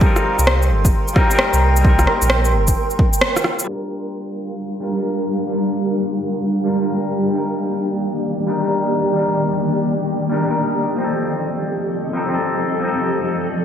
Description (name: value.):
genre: future garage.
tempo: 131 BPM.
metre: 4/4.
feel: swing 64% on 16ths.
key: G minor.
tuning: A4 = 442 Hz.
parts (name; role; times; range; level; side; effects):
clean electric guitar; accompaniment; 0.0-13.6 s; F3 to Bb4; -22 LUFS; left 2 dB; vintage 12-bit sampler grit, sidechain pumping, digital delay.
granular cloud pad; sustained chords; 0.0-13.6 s; Eb3 to C6; -21 LUFS; right 1 dB; built-in reverb, sidechain pumping.
electronic kick drum; drums; 0.0-3.1 s; none; -16 LUFS; equal; overdrive, studio reverb.
electronic rim click and shaker; drums; 0.2-3.7 s; none; -19 LUFS; equal; overdrive, low-pass filter on perc, studio reverb, low-pass filter on snare, gated reverb.
warm sub bass; bass; 0.4-2.7 s; G1 to C2; -16 LUFS; equal; tube saturation, sidechain pumping.
wind-like tuned noise texture; texture; 4.4-13.6 s; G3 to G4; -28 LUFS; equal; built-in reverb, ensemble chorus.
room: moderate lush hall reverb, RT60 1.8 s, digital ambience.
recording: bright 1980s-style digital production, low-pass filter.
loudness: -16 LUFS.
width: side -9 dB against mid.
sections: 0.0-3.7 A section; 3.7-13.6 B section.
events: kick drops out 3.2-3.7; band accent 3.2; filter sweep 3.7-13.6.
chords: 0.0 Cm7; 3.7 Gm7; 7.3 Ebmaj7; 11.0 F7.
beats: | 0.02 0.47 0.93 1.39 | 1.85 2.31 2.77 3.22 | 3.68 4.14 4.60 5.05 | 5.51 5.97 6.43 6.89 | 7.34 7.80 8.26 8.72 | 9.18 9.63 10.09 10.55 | 11.01 11.47 11.93 12.38 | 12.84 13.30.